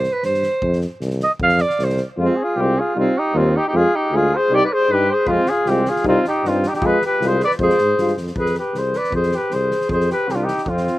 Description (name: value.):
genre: balkan folk, Balkan brass band.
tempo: 156 BPM.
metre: 2/4.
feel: swing 54% on 16ths.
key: F dorian sharp4.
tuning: A4 = 440 Hz.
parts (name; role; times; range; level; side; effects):
breathy alto saxophone; second line; 0.0-11.0 s; C4 to F5; -21 LUFS; right 2 dB; slapback echo.
mellow tuba; bass; 0.0-10.9 s; C2 to Ab2; -22 LUFS; equal; none.
loose indie drum kit; percussion; 0.0-2.0, 5.3-10.9 s; kick drum, snare drum; -32 LUFS; equal; none.
mellow cornet; melody; 2.2-11.0 s; F4 to D5; -20 LUFS; left 2 dB; slapback echo.
warm French horn; accompaniment; 2.2-8.1 s; Eb4 to F4; -24 LUFS; left 3 dB; slapback echo.
warm euphonium; accompaniment; 2.2-8.1 s; G3 to Ab3; -26 LUFS; right 3 dB; slapback echo.
room: little or no reverb.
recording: none.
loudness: -16 LUFS.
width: side -16 dB against mid.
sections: 0.0-2.2 A section; 2.2-8.4 B section; 8.4-11.0 C section.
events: alto saxophone solo 0.0-2.2.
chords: 0.0 C5; 0.6 F5; 2.2 Fm; 3.0 Cm; 3.7 Fm; 4.5 Cm; 5.3 Fm; 6.1 Cm; 6.8 Fm.